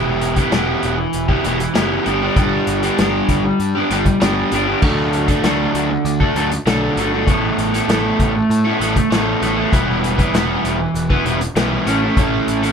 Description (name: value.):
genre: indie rock.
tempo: 98 BPM.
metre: 4/4.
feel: straight.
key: unclear.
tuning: A4 = 438 Hz.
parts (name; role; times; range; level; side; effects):
overdriven electric guitar; riff; 0.0-12.7 s; D3 to B4; -16 LUFS; right 1 dB; none.
fuzz picked electric bass; bass; 0.0-12.7 s; E1 to A2; -23 LUFS; equal; overdrive.
vintage drum kit; drums; 0.2-12.7 s; crash cymbal, hi-hat, kick drum, snare drum; -20 LUFS; left 1 dB; none.
room: light reverb.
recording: band playing live in one room.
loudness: -14 LUFS.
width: side -6 dB against mid.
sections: 0.0-12.7 A section.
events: none.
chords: 0.0 Em; 2.1 G; 4.8 D; 7.3 Asus2; 9.7 Em; 11.9 A.